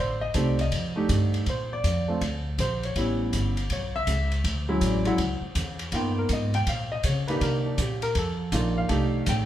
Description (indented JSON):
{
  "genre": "jazz piano trio",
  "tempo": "161 BPM",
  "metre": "4/4",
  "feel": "swing 65% on 8ths",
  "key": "unclear",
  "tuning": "A4 = 438 Hz",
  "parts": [
    { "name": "warm concert grand piano", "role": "melody", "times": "0.0-9.5 s", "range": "F#3 to G5", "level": "-27 LUFS", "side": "equal", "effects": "none" },
    { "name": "upright bass", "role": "bass", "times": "0.0-9.5 s", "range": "G1 to Db3", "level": "-27 LUFS", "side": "equal", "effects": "none" },
    { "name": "open jazz drum kit", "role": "drums", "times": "0.3-9.4 s", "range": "hi-hat, kick drum, ride cymbal", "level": "-32 LUFS", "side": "equal", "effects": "none" }
  ],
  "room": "moderate large studio reverb, RT60 1.1 s",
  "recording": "band playing live in one room",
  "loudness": "-24 LUFS",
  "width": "side -12 dB against mid",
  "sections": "0.0-1.5 A section; 1.5-9.5 B section",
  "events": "grand piano solo 1.5-9.5",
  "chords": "0.0 Am7b5; 0.7 F13; 1.5 Bbadd9; 3.0 A7; 4.4 Dmaj9#11; 5.9 G7alt; 7.4 Cm11; 8.9 F13"
}